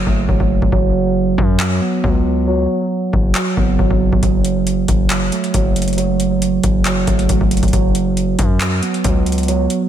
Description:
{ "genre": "hip hop, trap", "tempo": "137 BPM", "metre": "4/4", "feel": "half-time", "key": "unclear", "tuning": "A4 = 440 Hz", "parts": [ { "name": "mellow tine electric piano", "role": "arpeggios", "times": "0.0-9.9 s", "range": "F#3 to B3", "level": "-17 LUFS", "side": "right 4 dB", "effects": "lush chorus, low-pass filter, diffuse ambient delay" }, { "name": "distorted 808-style bass", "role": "bass", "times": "0.0-9.7 s", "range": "F#1 to F#2", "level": "-20 LUFS", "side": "left 1 dB", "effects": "distortion" }, { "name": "booming analog drum machine", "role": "drums", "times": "0.1-9.8 s", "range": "handclaps, hi-hat, kick drum", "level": "-18 LUFS", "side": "left 1 dB", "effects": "none" } ], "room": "light reverb", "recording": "none", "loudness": "-14 LUFS", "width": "side -10 dB against mid", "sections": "0.0-9.9 A section", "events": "break 0.0-4.2; filter sweep on tine electric piano 0.0-9.9", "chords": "0.0 F#m; 0.7 B5/F#; 4.2 F#m; 7.7 B5/F#" }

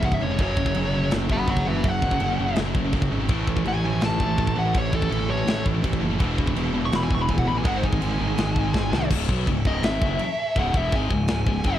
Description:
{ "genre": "heavy metal", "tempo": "165 BPM", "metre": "4/4", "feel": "straight", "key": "unclear", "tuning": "A4 = 440 Hz", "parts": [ { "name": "dark smooth lead guitar", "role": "melody", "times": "0.0-11.8 s", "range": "A4 to C#6", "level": "-27 LUFS", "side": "left 1 dB", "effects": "overdrive, slapback echo" }, { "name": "heavy high-gain guitar", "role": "riff", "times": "0.0-11.8 s", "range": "C#2 to B3", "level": "-32 LUFS", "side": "left 9 dB", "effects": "distortion" }, { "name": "heavy high-gain guitar", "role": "riff", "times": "0.0-9.1 s", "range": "C#2 to A3", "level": "-29 LUFS", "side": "right 8 dB", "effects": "distortion" }, { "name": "high-gain distorted guitar", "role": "riff", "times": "0.0-11.8 s", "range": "C#2 to B3", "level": "-30 LUFS", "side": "equal", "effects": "distortion" }, { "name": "fuzz picked electric bass", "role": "bass", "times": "0.0-11.8 s", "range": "C#1 to B#1", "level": "-26 LUFS", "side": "equal", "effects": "overdrive" }, { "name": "tight metal drum kit", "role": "drums", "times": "0.0-11.7 s", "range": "crash cymbal, kick drum, snare drum", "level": "-26 LUFS", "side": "equal", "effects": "none" } ], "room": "little or no reverb", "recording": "dark, warm production", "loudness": "-20 LUFS", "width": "side -12 dB against mid", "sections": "0.0-9.1 A section; 9.1-11.8 B section", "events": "lead electric guitar solo 0.0-9.1; drum fill 8.7-9.1", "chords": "0.4 F#5; 3.3 A5; 6.2 E5; 7.7 G#5; 9.1 C#m" }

